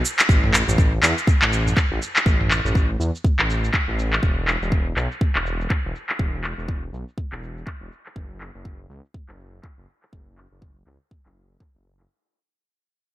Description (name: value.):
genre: afro house.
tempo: 122 BPM.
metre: 4/4.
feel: swing 58% on 16ths.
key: unclear.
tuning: A4 = 440 Hz.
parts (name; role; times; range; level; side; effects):
dark detuned saw bass; bass; 0.0-12.1 s; E1 to E2; -25 LUFS; equal; sidechain pumping.
afro-pop drum kit; drums; 0.1-12.1 s; handclaps, shaker, toms; -21 LUFS; equal; overdrive, low-pass filter on toms, low-pass filter on perc, low-pass filter on snare, gated reverb.
electronic kick drum; drums; 0.3-11.7 s; none; -20 LUFS; equal; none.
room: little or no reverb.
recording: bright 1980s-style digital production.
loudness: -18 LUFS.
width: side -14 dB against mid.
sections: 0.0-12.1 A section.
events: fade-out 0.0-12.1.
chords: none.